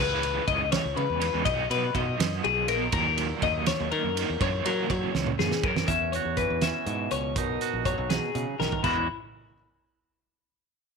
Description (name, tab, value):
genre	math rock and midwest emo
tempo	81 BPM (dotted quarters)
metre	6/8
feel	straight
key	E lydian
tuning	A4 = 439 Hz
part	twelve-string electric guitar	arpeggios	0.0-9.1 s	E4 to E5	-28 LUFS	left 13 dB	slapback echo
part	crunchy overdriven guitar	riff	0.0-5.9 s	F#2 to D#4	-32 LUFS	right 16 dB	tremolo
part	modern bright fingered electric bass	bass	0.0-9.1 s	A#1 to F#3	-32 LUFS	right 1 dB	none
part	loose indie drum kit	drums	0.2-9.0 s	crash cymbal, hi-hat, kick drum, ride cymbal, snare drum, toms	-30 LUFS	right 5 dB	none
part	twangy electric guitar	accompaniment	5.9-9.1 s	E2 to F#4	-31 LUFS	right 16 dB	none
room	light reverb, small room ambience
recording	1960s-style stereo with parts hard left and right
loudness	-24 LUFS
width	side -5 dB against mid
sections	0.0-5.9 A section; 5.9-8.8 B section; 8.8-10.3 C section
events	drum fill 5.1-5.9, 8.6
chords	0.0 C#m7; 1.5 Bmaj7; 2.9 D#m7; 4.4 F#7; 5.9 E69; 7.4 Bmaj9; 8.8 E69